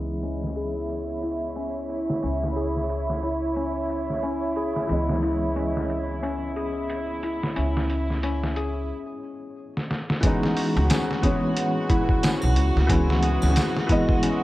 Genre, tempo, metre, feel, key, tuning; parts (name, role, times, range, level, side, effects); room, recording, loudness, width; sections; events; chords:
trip hop; 90 BPM; 4/4; swing 58% on 16ths; C# minor; A4 = 440 Hz
felt-muted upright piano; accompaniment; 0.0-14.4 s; E3 to D#5; -28 LUFS; equal; harmonic tremolo, tape echo
warm studio violin section; sustained chords; 0.0-14.4 s; E4 to F#4; -30 LUFS; right 2 dB
Celtic harp; arpeggios; 0.0-14.4 s; C#4 to G#4; -30 LUFS; left 3 dB; vintage 12-bit sampler grit, low-pass filter, digital delay
upright bass; bass; 0.0-13.6 s; B1 to C#2; -27 LUFS; equal
wind-like tuned noise texture; texture; 0.4-14.4 s; B4 to C#5; -39 LUFS; right 4 dB; built-in reverb
trip hop sampler-style drum kit; drums; 0.2-14.4 s; hi-hat, kick drum, snare drum; -26 LUFS; equal; overdrive, low-pass filter on hats, low-pass filter on kick, low-pass filter on snare
tambourine and triangle; percussion; 10.9-13.7 s; -40 LUFS; left 1 dB
small room ambience; worn, warbling old tape, cassette tape, warbly pitch drift, low-pass filter; -22 LUFS; side -16 dB against mid
0.0-10.2 A section; 10.2-14.4 B section
filter sweep on harp 0.0-10.2; filter sweep 0.0-10.2; break 8.9-10.2; drum fill 9.7-10.2
0.0 C#m7